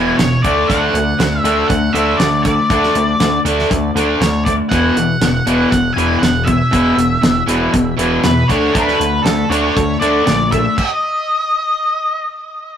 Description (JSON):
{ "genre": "classic rock", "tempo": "119 BPM", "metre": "4/4", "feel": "straight", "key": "unclear", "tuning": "A4 = 440 Hz", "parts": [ { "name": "octave-fuzz lead guitar", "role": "melody", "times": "0.0-12.3 s", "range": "A4 to G#5", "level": "-18 LUFS", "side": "left 1 dB", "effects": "distortion, digital delay" }, { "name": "cranked stack guitar", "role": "riff", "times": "0.0-10.7 s", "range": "E2 to D4", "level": "-20 LUFS", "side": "right 6 dB", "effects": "overdrive" }, { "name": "distorted electric guitar", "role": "riff", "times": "0.0-10.8 s", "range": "E2 to D4", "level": "-17 LUFS", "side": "left 4 dB", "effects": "distortion" }, { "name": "fat analog bass", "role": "bass", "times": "0.0-10.7 s", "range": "E1 to E2", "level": "-20 LUFS", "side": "right 1 dB", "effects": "none" }, { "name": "damped 70s drum kit", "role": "drums", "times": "0.2-10.9 s", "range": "crash cymbal, hi-hat, kick drum, snare drum", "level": "-19 LUFS", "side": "right 1 dB", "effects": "none" } ], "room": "moderate studio reverb, RT60 0.5 s", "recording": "rough rehearsal-room recording", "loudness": "-12 LUFS", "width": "side -8 dB against mid", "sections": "0.0-12.8 A section", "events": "stop 10.8-12.8", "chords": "0.4 D; 4.7 E5; 8.5 D5; 10.8 N.C." }